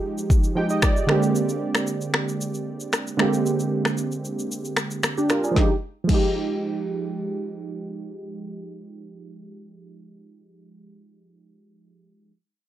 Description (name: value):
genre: afrobeats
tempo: 114 BPM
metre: 4/4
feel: straight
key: F dorian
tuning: A4 = 440 Hz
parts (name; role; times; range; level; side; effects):
- warm analog keys; accompaniment; 0.0-12.3 s; D3 to G5; -24 LUFS; right 2 dB; chorus, low-pass filter
- afro-pop drum kit; drums; 0.2-6.2 s; crash cymbal, finger snaps, kick drum, rim click, shaker, snare drum; -23 LUFS; equal; none
room: light reverb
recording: dark, warm production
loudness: -21 LUFS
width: side -12 dB against mid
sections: 0.0-5.6 A section; 5.6-9.8 B section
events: filter sweep on synth keys 0.0-5.6; synth keys fill 0.3-1.4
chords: 0.0 Fm9; 1.1 Bb13; 5.6 Fm9